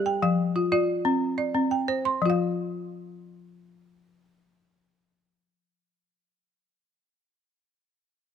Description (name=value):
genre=west african traditional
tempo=120 BPM (dotted quarters)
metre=12/8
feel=straight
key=unclear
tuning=A4 = 445 Hz
part: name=balafon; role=solo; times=0.0-6.8 s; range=F3 to C6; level=-23 LUFS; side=left 1 dB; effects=none
room=moderate recital hall reverb, RT60 1.6 s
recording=close, detailed microphones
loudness=-23 LUFS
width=side -8 dB against mid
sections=0.0-2.2 A section; 2.2-6.2 B section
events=none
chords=0.2 F5; 1.2 C5; 2.2 F5